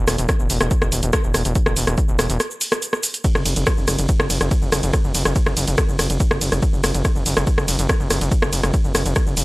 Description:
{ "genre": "driving peak-time techno", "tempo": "142 BPM", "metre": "4/4", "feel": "straight", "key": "unclear", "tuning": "A4 = 437 Hz", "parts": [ { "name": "gritty driven synth bass", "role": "bass", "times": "0.0-9.4 s", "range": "E1 to F#1", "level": "-21 LUFS", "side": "equal", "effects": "sidechain pumping" }, { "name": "punchy analog drum machine", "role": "drums", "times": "0.1-9.4 s", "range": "hi-hat, ride cymbal, rim click, shaker", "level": "-21 LUFS", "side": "equal", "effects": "none" }, { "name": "electronic kick drum", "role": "drums", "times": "0.3-9.2 s", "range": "none", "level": "-20 LUFS", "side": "equal", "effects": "none" } ], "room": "little or no reverb", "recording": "dry, gritty hardware recording, transformer saturation", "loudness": "-17 LUFS", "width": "side -22 dB against mid", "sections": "0.0-9.4 A section", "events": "break 2.4-3.2", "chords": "none" }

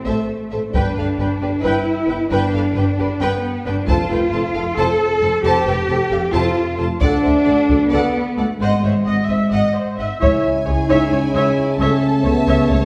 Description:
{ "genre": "cinematic, epic orchestral film score", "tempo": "267 BPM (eighths)", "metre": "7/8", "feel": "straight", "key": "unclear", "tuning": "A4 = 436 Hz", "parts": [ { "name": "warm symphonic violin section", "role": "melody", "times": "0.0-12.8 s", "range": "D5 to A5", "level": "-30 LUFS", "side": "equal", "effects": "none" }, { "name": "warm symphonic cello section", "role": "bass", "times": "0.0-12.8 s", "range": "C#2 to A4", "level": "-22 LUFS", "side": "equal", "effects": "none" }, { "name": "rich symphonic violin section", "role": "second line", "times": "0.1-12.8 s", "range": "E4 to E5", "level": "-29 LUFS", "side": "equal", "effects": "none" }, { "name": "rich symphonic viola section", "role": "accompaniment", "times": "0.1-12.8 s", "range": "G#4 to E5", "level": "-26 LUFS", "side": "equal", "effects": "none" }, { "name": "rich symphonic double bass section", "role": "bass", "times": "0.1-12.8 s", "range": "F1 to D2", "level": "-25 LUFS", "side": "equal", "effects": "none" }, { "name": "solo taiko drums", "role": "drums", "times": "0.7-11.1 s", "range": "none", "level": "-24 LUFS", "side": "equal", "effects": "none" }, { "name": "clear trombone section", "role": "sustained chords", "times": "10.2-12.8 s", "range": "C#3 to A3", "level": "-26 LUFS", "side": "equal", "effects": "none" }, { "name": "mellow French horn section", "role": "sustained chords", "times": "10.2-12.8 s", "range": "A3 to E4", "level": "-20 LUFS", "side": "equal", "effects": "none" } ], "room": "wet recital hall reverb, RT60 1.5 s", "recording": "recorded in a church or concert hall", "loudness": "-18 LUFS", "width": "mono", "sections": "0.0-10.2 A section; 10.2-12.8 B section", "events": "none", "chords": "0.0 Am; 0.7 G; 3.9 F; 7.0 D; 8.6 G#7; 10.2 C#m; 11.8 A/C#" }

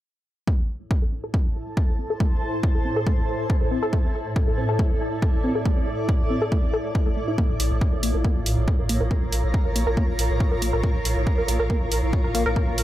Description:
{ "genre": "driving peak-time techno", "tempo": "139 BPM", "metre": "4/4", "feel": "straight", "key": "unclear", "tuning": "A4 = 439 Hz", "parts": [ { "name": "tight sequenced synth", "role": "riff", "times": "0.5-12.6 s", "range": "A3 to Bb4", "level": "-28 LUFS", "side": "left 1 dB", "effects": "chorus, tube saturation, sidechain pumping, digital delay" }, { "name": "swarming drone", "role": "drone", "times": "1.6-12.8 s", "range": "A2", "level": "-31 LUFS", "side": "right 1 dB", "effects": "built-in reverb, phaser, sidechain pumping" }, { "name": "electronic kick drum", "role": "drums", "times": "0.5-12.7 s", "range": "none", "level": "-22 LUFS", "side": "equal", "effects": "none" }, { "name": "granular cloud pad", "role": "texture", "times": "1.6-12.8 s", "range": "E4 to Bb5", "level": "-29 LUFS", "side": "equal", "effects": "built-in reverb, sidechain pumping" }, { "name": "warm sub bass", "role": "bass", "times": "7.5-12.8 s", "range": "Bb1", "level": "-26 LUFS", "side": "equal", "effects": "tube saturation, sidechain pumping, low-pass filter" }, { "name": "electronic hi-hat", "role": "drums", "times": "7.6-12.8 s", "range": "none", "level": "-28 LUFS", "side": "right 2 dB", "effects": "none" } ], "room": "light reverb", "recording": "none", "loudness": "-20 LUFS", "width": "side -14 dB against mid", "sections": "0.5-12.8 A section", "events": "filter sweep on synth arpeggio sound 0.5-12.8", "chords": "0.5 Am; 7.4 Bbm" }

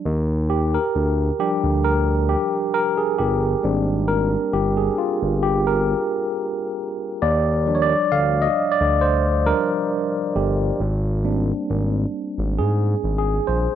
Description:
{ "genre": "R&B, neo-soul", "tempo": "67 BPM", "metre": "4/4", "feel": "swing 53% on 16ths", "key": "Eb major", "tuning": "A4 = 440 Hz", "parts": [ { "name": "tine electric piano", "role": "accompaniment", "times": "0.0-13.8 s", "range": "F3 to F5", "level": "-20 LUFS", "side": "equal", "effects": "slow stereo tremolo" }, { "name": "smooth synth bass", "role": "bass", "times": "0.1-13.7 s", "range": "G1 to Ab2", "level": "-21 LUFS", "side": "equal", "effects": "none" } ], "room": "light reverb, digital ambience", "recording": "none", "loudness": "-18 LUFS", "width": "side -10 dB against mid", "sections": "0.0-13.8 A section", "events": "tine electric piano solo 0.0-13.8", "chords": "0.0 Ebmaj9; 3.6 Abmaj9#11; 7.2 Ebmaj9; 10.8 Abmaj9#11" }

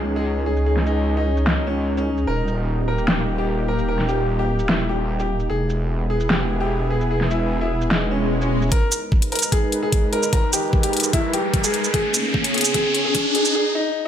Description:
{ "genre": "heavy wobble dubstep", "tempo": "149 BPM", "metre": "4/4", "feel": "half-time", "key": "G# harmonic minor", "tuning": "A4 = 440 Hz", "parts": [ { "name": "clear grand piano", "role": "melody", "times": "0.0-14.1 s", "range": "C#4 to A#4", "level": "-24 LUFS", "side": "left 1 dB", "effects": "tape echo" }, { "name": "supersaw pad", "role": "sustained chords", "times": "0.0-13.5 s", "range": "C#3 to B4", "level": "-26 LUFS", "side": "right 1 dB", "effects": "sidechain pumping, low-pass filter" }, { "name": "wobble bass", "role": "bass", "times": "0.0-8.7 s", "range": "D#1 to C#2", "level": "-22 LUFS", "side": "equal", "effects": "chorus, overdrive" }, { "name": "dubstep drum kit", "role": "drums", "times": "0.6-13.5 s", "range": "hi-hat, shaker, snare drum", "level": "-23 LUFS", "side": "equal", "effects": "overdrive, low-pass filter on perc, studio reverb, low-pass filter on snare, low-pass filter on hats" }, { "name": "swell and riser", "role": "sound effects", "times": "8.1-13.5 s", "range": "none", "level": "-23 LUFS", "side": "left 1 dB", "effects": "none" }, { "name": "electronic kick drum", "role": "drums", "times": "8.7-13.2 s", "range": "none", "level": "-20 LUFS", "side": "equal", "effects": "overdrive, studio reverb" } ], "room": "light reverb, digital ambience", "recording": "high-pass filter", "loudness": "-18 LUFS", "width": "side -9 dB against mid", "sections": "0.0-8.7 A section; 8.7-14.1 B section", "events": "filter sweep on supersaw synth 0.0-8.7, 8.7-14.1; swell 8.1-8.7; build-up 8.7-14.1; filter sweep 8.7-14.1; riser 10.5-13.5; drum fill 11.9-13.5; break 13.5-14.1", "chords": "0.0 C#sus2; 2.3 D#; 5.5 E; 8.7 G#madd9; 11.9 C#sus2" }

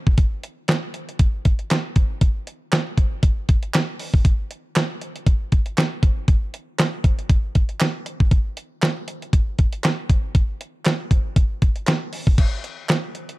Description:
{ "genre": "funk", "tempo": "118 BPM", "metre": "4/4", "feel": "swing 56% on 16ths", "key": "none", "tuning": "none", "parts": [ { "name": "detuned 8-bit digital drum machine", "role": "drums", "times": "0.1-13.4 s", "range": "crash cymbal, hi-hat, kick drum, snare drum", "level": "-18 LUFS", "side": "equal", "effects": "none" }, { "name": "group handclap", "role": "percussion", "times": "0.7-13.0 s", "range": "none", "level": "-30 LUFS", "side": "right 4 dB", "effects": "none" } ], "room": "little or no reverb", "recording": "dry, close 1970s-style studio recording", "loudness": "-19 LUFS", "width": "side -20 dB against mid", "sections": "0.0-12.4 A section; 12.4-13.4 B section", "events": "none", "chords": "none" }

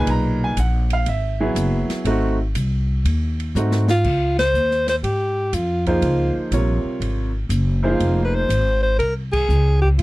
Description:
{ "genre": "modal jazz", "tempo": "121 BPM", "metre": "4/4", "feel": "swing 68% on 8ths", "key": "Db lydian from 4.0 s", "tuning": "A4 = 439 Hz", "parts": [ { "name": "clear upright piano", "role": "accompaniment", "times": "0.0-8.5 s", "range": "A#2 to A#5", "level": "-22 LUFS", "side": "right 1 dB", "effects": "none" }, { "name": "upright bass", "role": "bass", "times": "0.0-10.0 s", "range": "F1 to G#2", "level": "-20 LUFS", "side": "equal", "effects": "none" }, { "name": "open jazz drum kit", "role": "drums", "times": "0.1-10.0 s", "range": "crash cymbal, hi-hat, kick drum, ride cymbal, snare drum", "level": "-31 LUFS", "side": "equal", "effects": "none" }, { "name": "breathy alto saxophone", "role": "melody", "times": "3.9-10.0 s", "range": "F4 to C5", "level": "-20 LUFS", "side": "equal", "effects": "none" } ], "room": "little or no reverb", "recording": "dry, close 1970s-style studio recording", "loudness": "-17 LUFS", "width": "side -19 dB against mid", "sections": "0.0-4.0 A section; 4.0-10.0 B section", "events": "drum fill 3.5-4.0; band accent 4.3, 9.2", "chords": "0.0 F#9sus4; 2.1 G#7b9; 4.0 Dbmaj9" }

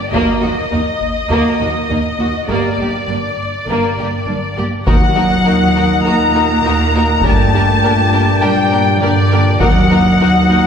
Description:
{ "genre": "cinematic, epic orchestral film score", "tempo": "101 BPM", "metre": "4/4", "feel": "straight", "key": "unclear", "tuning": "A4 = 440 Hz", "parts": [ { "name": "rich symphonic violin section", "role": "melody", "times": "0.0-10.7 s", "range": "D5 to Bb5", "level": "-17 LUFS", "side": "left 3 dB", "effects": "none" }, { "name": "warm symphonic violin section", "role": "second line", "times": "0.1-10.6 s", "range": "Bb3 to Bb4", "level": "-22 LUFS", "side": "left 1 dB", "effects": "none" }, { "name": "dark symphonic viola section", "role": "accompaniment", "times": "0.1-10.6 s", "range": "Bb3 to Eb4", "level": "-22 LUFS", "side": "right 2 dB", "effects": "none" }, { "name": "mellow French horn section", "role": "sustained chords", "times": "0.1-10.7 s", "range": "Bb2 to G4", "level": "-22 LUFS", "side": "left 2 dB", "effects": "none" }, { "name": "dark symphonic cello section", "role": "bass", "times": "0.1-10.7 s", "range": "Eb2 to Bb3", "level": "-18 LUFS", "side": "right 1 dB", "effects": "none" }, { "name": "dark symphonic double bass section", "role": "bass", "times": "0.1-10.7 s", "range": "G1 to G2", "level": "-19 LUFS", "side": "right 2 dB", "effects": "none" }, { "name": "taiko ensemble", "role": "drums", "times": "0.1-1.3, 4.9-10.2 s", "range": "none", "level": "-19 LUFS", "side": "equal", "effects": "none" }, { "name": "clear woodwind section", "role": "sustained chords", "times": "4.9-10.7 s", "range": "G4 to G5", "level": "-22 LUFS", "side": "right 1 dB", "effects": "none" }, { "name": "timpani", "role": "percussion", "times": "4.9-5.7, 9.6-10.5 s", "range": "Eb3", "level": "-22 LUFS", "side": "equal", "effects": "none" } ], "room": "wet scoring stage reverb, RT60 2.1 s", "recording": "heard from further back in the room", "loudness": "-11 LUFS", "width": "side -7 dB against mid", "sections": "0.0-4.9 A section; 4.9-10.7 B section", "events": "build-up 0.0-4.9", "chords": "0.1 Ebm; 2.5 Gm; 4.9 Ebm; 7.2 Gm; 9.6 Ebm" }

